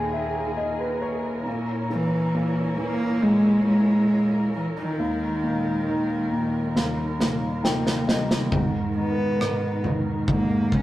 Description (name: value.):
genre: pop ballad.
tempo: 68 BPM.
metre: 4/4.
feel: straight.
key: unclear.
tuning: A4 = 440 Hz.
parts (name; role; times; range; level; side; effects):
warm cello; melody; 0.0-10.8 s; D#3 to C#4; -24 LUFS; equal; none.
warm concert grand piano; accompaniment; 0.0-10.8 s; D#2 to G#5; -27 LUFS; left 1 dB; none.
warm studio string section; sustained chords; 0.0-10.8 s; D#2 to A#4; -31 LUFS; right 1 dB; none.
modern studio drum kit; drums; 6.8-10.8 s; kick drum, rim click, snare drum, toms; -25 LUFS; right 1 dB; none.
room: wet stone room reverb, RT60 1.3 s.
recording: rough rehearsal-room recording.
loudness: -21 LUFS.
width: side -15 dB against mid.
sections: 0.0-10.8 A section.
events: grand piano fill 0.0-1.5, 7.2-8.5; drum fill 6.8-8.5.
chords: 0.0 D#sus4; 1.5 A#dim; 5.0 D#sus4; 6.8 D#; 8.5 G#madd9.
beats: 0.58 | 1.46 2.34 3.22 4.11 | 4.99 5.87 6.75 7.64 | 8.52 9.40 10.28.